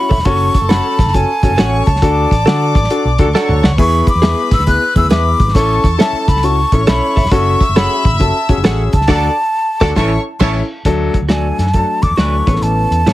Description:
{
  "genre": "uptempo 1960s-style soul",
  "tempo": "136 BPM",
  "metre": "4/4",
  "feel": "swing 65% on 8ths",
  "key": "unclear",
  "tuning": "A4 = 440 Hz",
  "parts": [
    { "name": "breathy mellow silver concert flute", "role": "melody", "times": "0.0-13.1 s", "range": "G#5 to F#6", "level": "-17 LUFS", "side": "equal", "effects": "analog delay" },
    { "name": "warm chamber violin section", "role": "second line", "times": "0.0-10.6 s", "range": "A4 to E6", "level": "-22 LUFS", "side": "left 2 dB", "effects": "none" },
    { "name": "warm grand piano", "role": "accompaniment", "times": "0.0-13.1 s", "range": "E3 to A4", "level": "-19 LUFS", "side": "left 3 dB", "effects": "none" },
    { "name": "direct-recorded clean electric guitar", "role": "stabs", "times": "0.1-13.1 s", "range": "E4 to F#5", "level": "-21 LUFS", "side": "right 4 dB", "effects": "none" },
    { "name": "vintage muted fingered electric bass", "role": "bass", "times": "0.1-13.1 s", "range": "E1 to D3", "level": "-16 LUFS", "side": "equal", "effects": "none" },
    { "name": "cloth-damped thuddy drum kit", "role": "drums", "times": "0.1-13.1 s", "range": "crash cymbal, hi-hat, kick drum, snare drum, splash cymbal, toms", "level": "-14 LUFS", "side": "equal", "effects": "none" },
    { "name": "clear horn section", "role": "second line", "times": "3.2-3.7, 9.1-12.5 s", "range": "E3 to B4", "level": "-24 LUFS", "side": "right 3 dB", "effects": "none" }
  ],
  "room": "light reverb",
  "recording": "heavily compressed radio sound",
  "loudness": "-11 LUFS",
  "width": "side -15 dB against mid",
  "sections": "0.0-10.9 A section; 10.9-13.1 B section",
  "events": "band accent 2.0-3.8, 9.1-10.9; drum fill 3.3-3.8",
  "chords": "0.3 F#m; 2.0 D; 3.8 E; 5.5 A; 7.3 F#m; 9.1 D; 10.0 A; 10.9 D; 12.4 Aadd9"
}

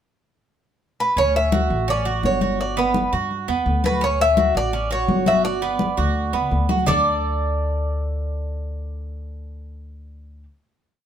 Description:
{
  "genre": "latin, Cuban son and guajira",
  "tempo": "168 BPM",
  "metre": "4/4",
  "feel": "straight",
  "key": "D major",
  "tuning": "A4 = 440 Hz",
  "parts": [
    { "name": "Cuban tres", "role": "melody", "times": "1.0-10.4 s", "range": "B4 to E5", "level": "-22 LUFS", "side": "left 1 dB", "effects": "none" },
    { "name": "Cuban tres", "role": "arpeggios", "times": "1.2-10.4 s", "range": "B3 to D5", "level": "-24 LUFS", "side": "right 4 dB", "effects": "none" },
    { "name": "upright bass", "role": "bass", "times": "1.2-10.4 s", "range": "G1 to G2", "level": "-25 LUFS", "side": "left 1 dB", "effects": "none" },
    { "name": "congas", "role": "percussion", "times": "1.2-7.0 s", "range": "none", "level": "-25 LUFS", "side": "left 4 dB", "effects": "none" }
  ],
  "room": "moderate studio reverb, RT60 0.7 s",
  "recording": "minimal, uncompressed stereo recording",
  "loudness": "-18 LUFS",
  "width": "side -9 dB against mid",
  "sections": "0.0-1.2 pickup bar; 1.2-6.9 montuno (vamp); 6.9-9.7 final chord",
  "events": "none",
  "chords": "0.0 N.C.; 1.2 Dmaj7; 2.6 Gmaj7; 4.0 Dmaj7; 5.4 Gmaj7; 6.9 D5"
}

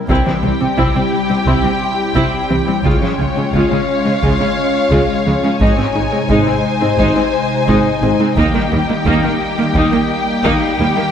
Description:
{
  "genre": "cinematic, hybrid orchestral and electronic film score",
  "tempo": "87 BPM",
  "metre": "4/4",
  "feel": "straight",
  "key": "unclear",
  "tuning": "A4 = 441 Hz",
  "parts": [
    { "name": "hollow soft pad", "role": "sustained chords", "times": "0.0-11.1 s", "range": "C3 to Eb5", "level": "-20 LUFS", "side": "left 1 dB", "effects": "ensemble chorus" },
    { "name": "mallet-like synth pluck", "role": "arpeggios", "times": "0.0-11.1 s", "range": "C3 to Ab4", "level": "-22 LUFS", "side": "left 1 dB", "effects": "chorus, digital delay" },
    { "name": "felt-muted upright piano", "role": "texture", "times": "0.0-11.1 s", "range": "Bb3 to C6", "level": "-28 LUFS", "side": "left 2 dB", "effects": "none" },
    { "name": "warm symphonic violin section", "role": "second line", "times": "0.1-11.1 s", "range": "G4 to Ab5", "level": "-19 LUFS", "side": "left 4 dB", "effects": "none" },
    { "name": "rich symphonic viola section", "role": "accompaniment", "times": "0.1-11.0 s", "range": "G3 to F4", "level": "-19 LUFS", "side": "right 1 dB", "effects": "none" },
    { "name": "rich studio double bass section", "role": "bass", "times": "0.1-10.9 s", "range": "Ab1 to Eb2", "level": "-22 LUFS", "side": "right 2 dB", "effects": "none" },
    { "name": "rich symphonic cello section", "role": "bass", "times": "0.1-11.0 s", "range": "Ab2 to Eb3", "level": "-23 LUFS", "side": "right 2 dB", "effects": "none" },
    { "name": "taiko ensemble", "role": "drums", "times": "0.1-11.1 s", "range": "none", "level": "-22 LUFS", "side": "equal", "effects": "none" }
  ],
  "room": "moderate scoring stage reverb, RT60 1.8 s",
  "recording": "none",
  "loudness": "-12 LUFS",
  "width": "side -8 dB against mid",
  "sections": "0.1-11.1 A section",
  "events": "none",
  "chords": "0.1 C; 2.9 Db; 5.6 Ab; 8.4 Eb"
}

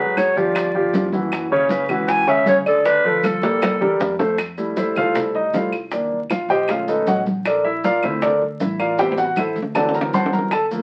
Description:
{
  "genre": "Afro-Cuban jazz",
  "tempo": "157 BPM",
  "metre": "4/4",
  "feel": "straight",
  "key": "F major from 4.4 s",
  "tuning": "A4 = 440 Hz",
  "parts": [
    { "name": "growling clarinet", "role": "melody", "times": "0.0-4.0 s", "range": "A4 to G#5", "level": "-22 LUFS", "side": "equal", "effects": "none" },
    { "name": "warm upright piano", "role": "accompaniment", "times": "0.0-10.8 s", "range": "C3 to C6", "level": "-21 LUFS", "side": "equal", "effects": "none" },
    { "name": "upright bass", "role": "bass", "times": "0.0-10.8 s", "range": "F#1 to F2", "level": "-36 LUFS", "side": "equal", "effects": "none" },
    { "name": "bongos", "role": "percussion", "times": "0.2-10.7 s", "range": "none", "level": "-29 LUFS", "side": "equal", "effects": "none" },
    { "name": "claves", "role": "percussion", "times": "0.2-10.7 s", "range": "none", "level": "-34 LUFS", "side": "equal", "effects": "none" },
    { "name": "congas", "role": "percussion", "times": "0.2-10.8 s", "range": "none", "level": "-28 LUFS", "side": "equal", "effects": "none" },
    { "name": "maracas", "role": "percussion", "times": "0.2-10.8 s", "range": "none", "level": "-44 LUFS", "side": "equal", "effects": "none" }
  ],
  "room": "moderate studio reverb, RT60 0.5 s",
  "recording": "very old 78 rpm record, vinyl crackle",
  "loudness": "-19 LUFS",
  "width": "mono",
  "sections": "0.0-4.4 A section; 4.4-10.8 B section",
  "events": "drum fill 3.2-4.4, 9.0-10.5; upright piano solo 4.4-10.8",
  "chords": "0.0 G#m7b5; 0.6 G5; 1.3 F#5; 2.9 Dm7; 3.6 C7; 4.4 Fmaj7; 5.9 Cm7; 6.7 B13; 7.5 Bbmaj7; 9.0 Am7; 9.8 D7"
}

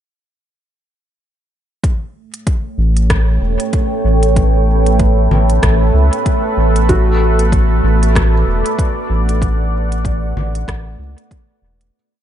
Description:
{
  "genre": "ambient dub",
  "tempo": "95 BPM",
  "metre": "4/4",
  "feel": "swing 58% on 16ths",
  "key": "A mixolydian",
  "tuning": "A4 = 440 Hz",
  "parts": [
    { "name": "deep dark ambient pad", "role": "sustained chords", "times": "2.7-11.9 s", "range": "A3 to G5", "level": "-18 LUFS", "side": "right 2 dB", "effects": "chorus, built-in reverb" },
    { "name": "electronic kick drum", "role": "drums", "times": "1.8-11.5 s", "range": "none", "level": "-16 LUFS", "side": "equal", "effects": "overdrive" },
    { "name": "organic electronic drum kit", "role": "drums", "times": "1.8-11.9 s", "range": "congas, hi-hat, rim click", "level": "-24 LUFS", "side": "left 1 dB", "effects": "dub echo" },
    { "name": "round analog bass", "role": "bass", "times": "2.8-11.9 s", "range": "E1 to C#2", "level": "-14 LUFS", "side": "equal", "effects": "tube saturation" },
    { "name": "felt-muted upright piano", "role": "arpeggios", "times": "6.9-12.0 s", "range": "F#4", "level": "-23 LUFS", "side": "right 2 dB", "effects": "dub echo" }
  ],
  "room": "digital ambience",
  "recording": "nothing above 10.8 kHz",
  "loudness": "-12 LUFS",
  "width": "side -10 dB against mid",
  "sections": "1.8-11.9 groove",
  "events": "fade-out 8.6-11.9",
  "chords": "1.8 A7; 6.9 Bm"
}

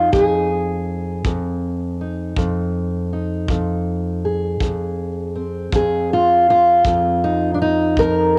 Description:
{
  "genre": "acoustic country blues, solo or duo",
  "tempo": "54 BPM (dotted quarters)",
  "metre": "12/8",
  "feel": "straight",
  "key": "F minor",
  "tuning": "A4 = 440 Hz",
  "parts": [
    { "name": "fingerpicked steel-string acoustic guitar", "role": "melody", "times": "0.0-8.4 s", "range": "F2 to Bb4", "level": "-19 LUFS", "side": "equal", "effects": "cassette tape" },
    { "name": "kick drum", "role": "drums", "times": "0.1-8.1 s", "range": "none", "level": "-24 LUFS", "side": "equal", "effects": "none" }
  ],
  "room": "moderate booth ambience, RT60 0.2 s",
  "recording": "home recording on cassette",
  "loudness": "-19 LUFS",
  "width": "mono",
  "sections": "0.0-8.4 A section",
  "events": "none",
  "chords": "0.0 Fm7"
}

